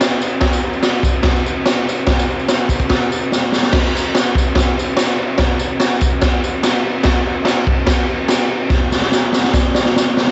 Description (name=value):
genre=rock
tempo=145 BPM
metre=4/4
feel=straight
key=none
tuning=none
part: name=raw garage drum kit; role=drums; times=0.0-10.3 s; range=crash cymbal, kick drum, snare drum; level=-16 LUFS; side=equal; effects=cassette tape
part: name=tambourine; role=percussion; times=0.0-10.2 s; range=none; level=-32 LUFS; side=equal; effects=none
room=little or no reverb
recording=home recording on cassette, nothing above 7.9 kHz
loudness=-16 LUFS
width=mono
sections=0.0-3.7 A section; 3.7-10.3 B section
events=drum fill 3.3-3.7, 8.7-10.3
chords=none